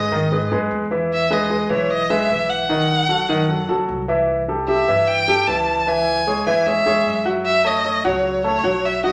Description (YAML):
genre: latin, Cuban son and guajira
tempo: 151 BPM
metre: 4/4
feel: straight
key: unclear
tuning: A4 = 442 Hz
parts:
  - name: rich violin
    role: melody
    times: 0.0-9.1 s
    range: C#5 to A5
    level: -22 LUFS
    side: equal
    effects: none
  - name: warm grand piano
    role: arpeggios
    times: 0.0-9.1 s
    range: D#3 to F#5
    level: -22 LUFS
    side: equal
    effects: none
  - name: upright bass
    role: bass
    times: 0.0-9.1 s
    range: B1 to G#2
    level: -35 LUFS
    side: equal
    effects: none
room: wet large studio reverb, RT60 0.9 s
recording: none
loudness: -19 LUFS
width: mono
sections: 0.0-9.1 A section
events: none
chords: 0.0 G#m; 1.1 E; 2.7 B7; 4.3 C6; 5.9 C#m; 7.5 F#m